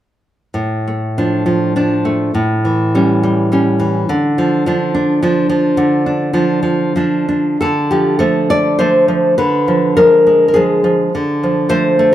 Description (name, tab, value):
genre	romantic piece for solo classical guitar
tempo	104 BPM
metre	3/4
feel	rubato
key	D minor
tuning	A4 = 440 Hz
part	nylon-string guitar	solo	0.5-12.1 s	A2 to D5	-12 LUFS	equal	none
room	moderate recital hall reverb, RT60 1.7 s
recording	none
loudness	-12 LUFS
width	side -12 dB against mid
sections	0.6-7.6 A section; 7.6-12.1 B section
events	none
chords	0.6 Dm/A; 2.3 A7; 4.1 Dm; 9.4 Ddim7; 11.1 Dm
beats	| 0.56 1.16 1.76 | 2.34 2.92 3.50 | 4.07 4.65 5.22 | 5.79 6.36 6.97 | 7.61 8.22 8.80 | 9.38 9.96 10.54 | 11.12 11.69